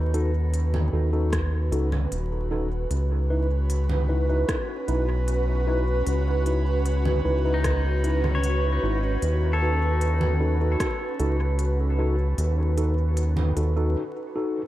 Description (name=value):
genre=ambient dub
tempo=76 BPM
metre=4/4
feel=straight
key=unclear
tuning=A4 = 440 Hz
part: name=airy breathy pad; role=sustained chords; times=0.0-14.0 s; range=C#4 to B4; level=-30 LUFS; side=right 1 dB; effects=chorus
part: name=pedal steel guitar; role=arpeggios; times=0.0-1.0, 7.5-13.1 s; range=D#4 to C#5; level=-33 LUFS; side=left 3 dB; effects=tape echo
part: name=round analog bass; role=bass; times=0.0-14.0 s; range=D#1 to D#2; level=-23 LUFS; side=equal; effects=none
part: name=mellow tine electric piano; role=stabs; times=0.1-14.6 s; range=D#4 to B4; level=-31 LUFS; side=equal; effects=slow stereo tremolo, dub echo
part: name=organic electronic drum kit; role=drums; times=0.1-13.7 s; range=congas, hi-hat, rim click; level=-34 LUFS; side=right 1 dB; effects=overdrive, dub echo
part: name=electronic kick drum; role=drums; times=1.3-11.0 s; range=none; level=-30 LUFS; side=equal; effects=none
room=light reverb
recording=vinyl crackle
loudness=-22 LUFS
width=side -14 dB against mid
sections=0.0-14.7 A section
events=break 14.0-14.7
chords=0.0 D#dim; 2.9 C#m7; 9.2 D#dim